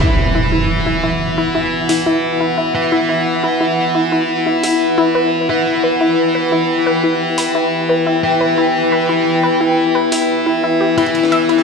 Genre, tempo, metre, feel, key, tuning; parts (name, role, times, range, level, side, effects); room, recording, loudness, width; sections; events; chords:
dark technical drum and bass; 175 BPM; 4/4; straight; E minor; A4 = 440 Hz
deep dark ambient pad; sustained chords; 0.0-11.6 s; E4 to G5; -17 LUFS; left 2 dB; chorus, built-in reverb
analog pluck; arpeggios; 0.0-11.6 s; E4 to E5; -19 LUFS; left 2 dB; chorus, ping-pong delay
thick fuzz guitar; stabs; 0.0-11.6 s; E4 to E5; -17 LUFS; right 1 dB; distortion, ping-pong delay
impact; sound effects; 0.0-1.4 s; -19 LUFS; right 1 dB
electronic hi-hat; drums; 1.9-2.0, 4.6-4.7, 7.4, 10.1-10.2 s; -24 LUFS; equal
breakbeat sampler-style drum kit; drums; 11.0-11.6 s; ride cymbal, snare drum; -29 LUFS; right 2 dB; high-pass filter on cymbals, high-pass filter on snare, high-pass filter on hats
moderate lush hall reverb, RT60 2.0 s; played on a big sound system in a bare room, large studio reverb; -13 LUFS; side -4 dB against mid
0.0-11.6 A section
impact 0.0-1.4; filter sweep on synth arpeggio sound 0.0-11.6
0.0 Em